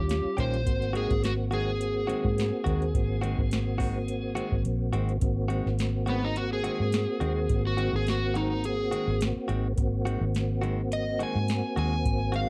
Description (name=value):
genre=straight-eighth soul blues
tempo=105 BPM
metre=4/4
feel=swing 54% on 16ths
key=Ab mixolydian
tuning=A4 = 440 Hz
part: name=overdriven slide guitar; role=melody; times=0.0-12.5 s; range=Cb4 to Ab5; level=-34 LUFS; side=equal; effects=none
part: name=tonewheel organ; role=accompaniment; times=0.0-12.5 s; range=G3 to Gb4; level=-35 LUFS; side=equal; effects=slow rotary speaker, overdrive, chorus vibrato
part: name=vintage muted fingered electric bass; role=bass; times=0.0-12.4 s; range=Ab1 to Ab2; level=-31 LUFS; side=equal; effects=none
part: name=soft vintage rhythm box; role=drums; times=0.1-12.5 s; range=hi-hat, kick drum, snare drum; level=-33 LUFS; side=equal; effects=overdrive
part: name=direct-recorded clean electric guitar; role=stabs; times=0.4-12.5 s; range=Eb3 to G4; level=-36 LUFS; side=equal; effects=none
room=little or no reverb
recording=dry, close 1970s-style studio recording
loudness=-28 LUFS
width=mono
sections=0.0-5.2 A section; 5.2-12.5 B section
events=kick and snare drop out 4.7-5.2; electric slide guitar solo 5.2-12.5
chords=0.0 Eb7; 0.7 Ab7